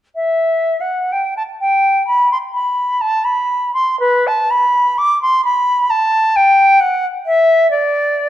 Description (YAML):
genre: classical, baroque-style fantasia for unaccompanied flute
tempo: 59-66 BPM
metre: 4/4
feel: rubato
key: unclear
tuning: A4 = 438 Hz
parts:
  - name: silver concert flute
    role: solo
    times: 0.2-8.3 s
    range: B4 to D6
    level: -12 LUFS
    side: equal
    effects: none
room: moderate recital hall reverb, RT60 1.5 s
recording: dark, warm production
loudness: -12 LUFS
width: side -12 dB against mid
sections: 0.2-8.3 A section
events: none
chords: none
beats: | 0.15 1.12 2.08 3.02 | 4.01 4.98 5.90 6.81 | 7.71